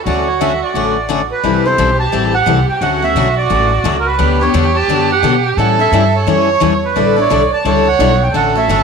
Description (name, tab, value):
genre	acoustic string swing (jazz manouche)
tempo	174 BPM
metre	4/4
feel	swing 62% on 8ths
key	unclear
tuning	A4 = 439 Hz
part	warm violin	second line	0.0-8.8 s	F#4 to D5	-17 LUFS	right 10 dB	none
part	accordion	melody	0.1-8.8 s	Bb4 to A5	-16 LUFS	right 3 dB	none
part	picked steel-string acoustic guitar	accompaniment	0.1-8.8 s	D3 to A4	-16 LUFS	left 12 dB	none
part	upright bass	bass	0.1-8.8 s	G1 to B2	-18 LUFS	equal	none
room	moderate plate reverb, RT60 3.5 s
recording	1960s-style stereo with parts hard left and right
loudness	-11 LUFS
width	side -5 dB against mid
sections	0.0-1.4 A section; 1.4-8.8 B section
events	none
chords	0.1 Dmaj7; 1.4 Am9; 2.8 Dmaj7; 4.2 Gmaj7; 5.6 A7; 7.0 A7sus4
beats	| 0.06 0.40 0.75 1.09 | 1.44 1.78 2.12 2.47 | 2.81 3.16 3.50 3.85 | 4.19 4.54 4.88 5.23 | 5.57 5.92 6.26 6.61 | 6.96 7.30 7.65 8.00 | 8.34 8.69